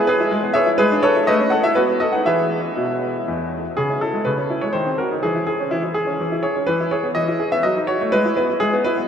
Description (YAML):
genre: classical-period piano sonatina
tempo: 124 BPM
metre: 3/4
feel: rubato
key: E major, C# minor from 3.8 s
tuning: A4 = 444 Hz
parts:
  - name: bright baby grand piano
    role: solo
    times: 0.0-9.1 s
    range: E2 to F#5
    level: -17 LUFS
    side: equal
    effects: none
room: wet huge ambient reverb, RT60 8.4 s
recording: in a vast, echoing space, nothing above 10.6 kHz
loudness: -17 LUFS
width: side -8 dB against mid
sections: 0.0-3.8 A section; 3.8-9.1 B section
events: none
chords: 0.0 E; 0.8 E7/G#; 1.3 A; 1.8 B7; 2.3 E; 3.8 C#m; 4.8 Cdim/Eb; 5.2 C#m/E; 6.7 E; 7.6 D#dim/F#; 8.1 E/G#